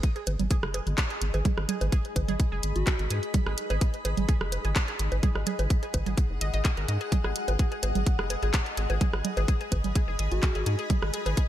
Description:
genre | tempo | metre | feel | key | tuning
minimal techno | 127 BPM | 4/4 | straight | G# minor | A4 = 440 Hz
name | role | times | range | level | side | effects
electronic kick drum | drums | 0.0-11.5 s | none | -25 LUFS | equal | none
garage drum kit | drums | 0.0-11.5 s | handclaps, hi-hat | -33 LUFS | equal | gated reverb
granular cloud pad | texture | 0.7-11.5 s | G#4 to B5 | -36 LUFS | left 2 dB | built-in reverb, lush chorus, sidechain pumping
resonant blip pluck | riff | 0.2-11.4 s | G#4 to D#5 | -38 LUFS | left 1 dB | chorus, vintage 12-bit sampler grit, sidechain pumping, digital delay
rubbery square bass | bass | 0.3-11.3 s | F#1 to G#2 | -28 LUFS | equal | sidechain pumping
electronic bongos, congas and rim click | percussion | 0.3-11.3 s | none | -33 LUFS | right 5 dB | gated reverb, ping-pong delay
soft struck synth lead | melody | 2.8-3.2, 10.3-10.8 s | F#4 | -37 LUFS | left 1 dB | chorus, ping-pong delay
room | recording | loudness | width
little or no reverb | bright 1980s-style digital production | -25 LUFS | side -12 dB against mid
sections
0.0-11.5 A section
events
none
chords
0.0 G#m7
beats
0.03 0.51 0.98 | 1.45 1.92 2.40 2.87 | 3.34 3.81 4.29 4.76 | 5.23 5.70 6.17 6.65 | 7.12 7.59 8.06 8.54 | 9.01 9.48 9.96 10.43 | 10.90 11.37

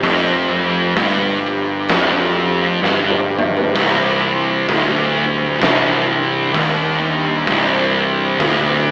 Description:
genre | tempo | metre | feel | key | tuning
stoner and doom metal | 64 BPM | 4/4 | swing 61% on 8ths | C minor | A4 = 443 Hz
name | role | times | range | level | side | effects
organ-like drone | sustained chords | 0.0-8.9 s | C3 to G4 | -26 LUFS | equal | none
thick fuzz guitar | riff | 0.0-8.9 s | C2 to G2 | -22 LUFS | left 1 dB | distortion
thick fuzz guitar | riff | 0.0-8.9 s | C2 to G2 | -16 LUFS | right 1 dB | distortion
growling picked electric bass | bass | 0.0-8.9 s | C1 to G1 | -25 LUFS | equal | overdrive
oversized low-tuned drum kit | drums | 0.0-8.7 s | hi-hat, kick drum, snare drum, toms | -20 LUFS | equal | none
room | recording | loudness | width
light reverb | band playing live in one room, AM radio sound | -13 LUFS | side -26 dB against mid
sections
0.0-8.9 A section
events
drum fill 2.8-3.8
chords
0.0 F5; 3.8 Cm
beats
| 0.03 0.97 1.90 2.83 | 3.76 4.69 5.62 6.55 | 7.48 8.41

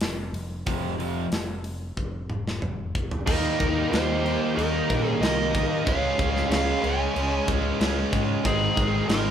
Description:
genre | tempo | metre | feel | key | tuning
hard rock | 93 BPM | 4/4 | straight | unclear | A4 = 440 Hz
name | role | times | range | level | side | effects
overdriven picked electric bass | bass | 0.0-9.3 s | F1 to Bb2 | -30 LUFS | equal | none
tight metal drum kit | drums | 0.0-9.3 s | crash cymbal, hi-hat, kick drum, snare drum, toms | -28 LUFS | equal | none
cranked stack guitar | riff | 0.7-9.3 s | F2 to Eb4 | -29 LUFS | right 6 dB | overdrive
overdriven semi-hollow guitar | riff | 0.7-9.3 s | F2 to Eb4 | -31 LUFS | left 5 dB | none
nasal lead guitar with a parked wah | melody | 3.3-9.3 s | Ab4 to Ab5 | -28 LUFS | right 1 dB | overdrive
nasal lead guitar with a parked wah | second line | 3.3-9.3 s | Eb4 to Db5 | -34 LUFS | equal | overdrive
distorted electric guitar | riff | 3.3-9.3 s | Ab2 to F4 | -30 LUFS | left 1 dB | overdrive
room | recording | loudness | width
moderate large studio reverb, RT60 1.1 s | band playing live in one room | -22 LUFS | side -9 dB against mid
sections
0.0-3.3 A section; 3.3-9.3 B section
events
drum fill 2.0-3.3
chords
0.0 F5; 3.3 Eb; 5.9 Db; 8.5 Ab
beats
0.02 | 0.67 1.32 1.98 2.62 | 3.27 3.92 4.57 5.22 | 5.87 6.51 7.16 7.81 | 8.46 9.10

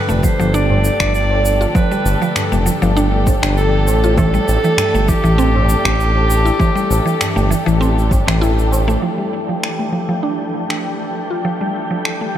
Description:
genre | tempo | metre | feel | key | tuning
organic downtempo | 99 BPM | 4/4 | swing 53% on 16ths | unclear | A4 = 441 Hz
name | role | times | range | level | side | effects
bright clarinet | melody | 0.0-8.4 s | G4 to D5 | -21 LUFS | right 1 dB | analog delay
dark studio string section | sustained chords | 0.0-12.4 s | D3 to A4 | -22 LUFS | left 1 dB | sidechain pumping, low-pass filter
mallet-like synth pluck | arpeggios | 0.1-12.4 s | E3 to F4 | -20 LUFS | equal | chorus, cassette tape, analog delay
smooth synth bass | bass | 0.1-9.0 s | F1 to A1 | -16 LUFS | equal | sidechain pumping
electronic shaker and finger snaps | drums | 0.1-12.2 s | none | -25 LUFS | equal | overdrive
electronic kick drum | drums | 0.2-8.2 s | none | -17 LUFS | equal | overdrive
tabla | percussion | 0.7-9.0 s | none | -27 LUFS | right 2 dB | none
wind-like tuned noise texture | texture | 9.5-12.4 s | G5 | -30 LUFS | right 1 dB | built-in reverb
room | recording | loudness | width
wet cathedral reverb, RT60 5.6 s | dreamy mix soaked in reverb | -13 LUFS | side -11 dB against mid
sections
0.0-9.0 A section; 9.0-12.4 B section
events
none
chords
0.0 G9; 4.2 Am7; 9.0 Gsus2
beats
0.54 1.15 | 1.75 2.36 2.96 3.57 | 4.17 4.78 5.39 5.99 | 6.60 7.21 7.81 8.42 | 9.02 9.63 10.24 10.84 | 11.45 12.05

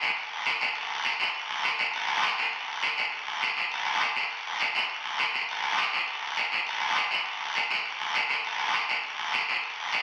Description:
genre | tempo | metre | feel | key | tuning
latin | 203 BPM | 4/4 | straight | none | none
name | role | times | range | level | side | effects
guiro | percussion | 0.0-10.0 s | none | -28 LUFS | equal | none
room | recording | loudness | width
wet studio reverb, RT60 0.6 s | very old 78 rpm record, vinyl crackle | -28 LUFS | mono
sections
0.0-1.9 A section; 1.9-10.0 B section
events
none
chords
none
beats
0.16 0.46 | 0.75 1.05 1.35 1.64 | 1.94 2.23 2.53 2.83 | 3.12 3.42 3.71 4.01 | 4.31 4.60 4.90 5.20 | 5.49 5.79 6.08 6.38 | 6.67 6.97 7.27 7.56 | 7.86 8.15 8.45 8.75 | 9.04 9.34 9.63 9.93

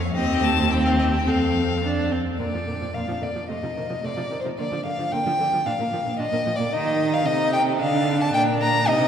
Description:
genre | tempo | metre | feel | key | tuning
quick classical-period movement for string quartet | 111 BPM | 2/4 | straight | Bb major | A4 = 440 Hz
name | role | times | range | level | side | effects
rich violin | melody | 0.0-9.1 s | Bb3 to A5 | -32 LUFS | left 7 dB | none
rich cello | bass | 0.0-9.1 s | Eb2 to Eb3 | -26 LUFS | right 3 dB | none
rich viola | accompaniment | 0.1-9.1 s | D3 to Eb4 | -26 LUFS | right 1 dB | none
warm violin | second line | 0.2-9.1 s | G4 to Bb5 | -24 LUFS | left 2 dB | none
room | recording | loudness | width
wet cathedral reverb, RT60 4.5 s | recorded in a church or concert hall | -20 LUFS | side -8 dB against mid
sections
0.0-2.4 A section; 2.4-9.1 B section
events
none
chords
0.1 Cm/Eb; 1.3 F; 2.4 Bb; 3.5 F7(no3)/C; 4.6 Bb/D (rootless); 5.7 Bb; 6.7 Eb; 7.3 Adim/C; 7.8 Dm; 8.3 Gm/Bb (rootless)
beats
| 0.15 0.70 | 1.27 1.84 | 2.41 2.96 | 3.50 4.04 | 4.58 5.12 | 5.66 6.20 | 6.73 7.26 | 7.80 8.34 | 8.88

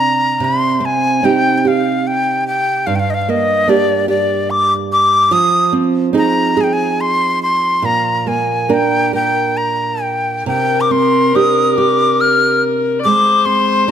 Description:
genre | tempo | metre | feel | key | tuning
celtic folk, Celtic slow air | 67-75 BPM | 3/4 | rubato | C minor | A4 = 440 Hz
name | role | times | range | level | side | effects
breathy bright jazz flute | melody | 0.0-13.9 s | D5 to F6 | -14 LUFS | left 2 dB | none
nylon-string guitar | accompaniment | 0.0-13.9 s | G2 to Bb4 | -17 LUFS | right 5 dB | none
warm viola | second line | 10.5-13.9 s | Bb4 to D5 | -17 LUFS | left 6 dB | none
room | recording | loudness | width
light reverb | close, detailed microphones | -12 LUFS | side -9 dB against mid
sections
0.4-13.9 A section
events
none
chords
0.4 Cm; 2.9 Gm; 5.3 Fm7; 7.8 Bb; 10.5 Csus2; 13.0 Abmaj7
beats
| 0.41 1.24 2.07 | 2.88 3.69 4.50 | 5.32 6.15 6.99 | 7.84 8.70 9.58 | 10.47 11.35 12.20 | 13.05 13.87

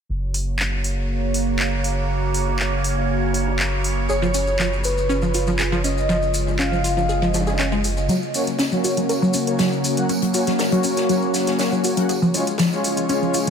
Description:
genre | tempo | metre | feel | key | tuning
progressive house | 120 BPM | 4/4 | straight | F# major | A4 = 440 Hz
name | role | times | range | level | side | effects
evolving wavetable pad | sustained chords | 0.5-13.5 s | C#3 to D#5 | -25 LUFS | right 2 dB | phaser, built-in reverb
saturated sub bass | bass | 0.1-13.5 s | F#1 | -26 LUFS | equal | high-pass filter
big rock drum kit | drums | 0.1-13.5 s | hi-hat, snare drum, tambourine | -31 LUFS | equal | high-pass filter on hats, low-pass filter on hats, high-pass filter on snare, low-pass filter on snare, high-pass filter on perc, low-pass filter on perc, high-pass filter on room, low-pass filter on room
house drum kit | drums | 0.3-13.5 s | handclaps, hi-hat | -27 LUFS | equal | overdrive
warm velvety synth lead | melody | 4.1-7.2 s | B4 to E#5 | -26 LUFS | left 1 dB | chorus, ping-pong delay
wide unison pluck | arpeggios | 4.1-13.5 s | E#3 to A#4 | -23 LUFS | equal | ping-pong delay
maracas | percussion | 4.1-13.5 s | none | -33 LUFS | left 5 dB | none
soft supersaw | stabs | 8.3-13.5 s | G#3 to F#5 | -22 LUFS | left 2 dB | low-pass filter, ping-pong delay
room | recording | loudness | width
light reverb, studio reverb | none | -18 LUFS | side -7 dB against mid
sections
0.1-8.1 A section; 8.1-13.5 B section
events
build-up 8.1-13.5; filter sweep on supersaw synth 8.1-13.5; filter sweep on ambient pad 8.1-13.5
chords
0.1 F#; 4.1 C#/F#; 8.1 F#; 12.1 C#/F#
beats
| 0.09 0.59 1.09 1.59 | 2.09 2.59 3.09 3.59 | 4.09 4.59 5.09 5.59 | 6.09 6.59 7.09 7.59 | 8.09 8.59 9.09 9.59 | 10.09 10.59 11.09 11.59 | 12.09 12.59 13.09

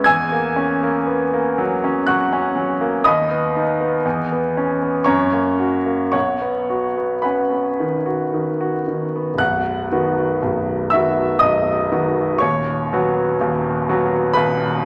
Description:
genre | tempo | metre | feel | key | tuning
classical, romantic nocturne for solo piano | 53-63 BPM | 3/4 | rubato | B major | A4 = 440 Hz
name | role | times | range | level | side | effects
clear concert grand piano | solo | 0.0-14.8 s | B0 to G#6 | -19 LUFS | equal | none
room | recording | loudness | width
wet recital hall reverb, RT60 1.9 s | vinyl crackle | -19 LUFS | mono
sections
0.0-9.4 A section; 9.4-14.8 A section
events
none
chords
0.1 F#7/E; 3.1 B/D#; 4.0 C#m7/E; 5.1 F#; 6.1 B; 12.4 B/D#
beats
| 0.08 1.08 2.08 | 3.07 4.05 5.06 | 6.14 7.25 8.32 | 9.39 10.41 11.40 | 12.39 13.38 14.33

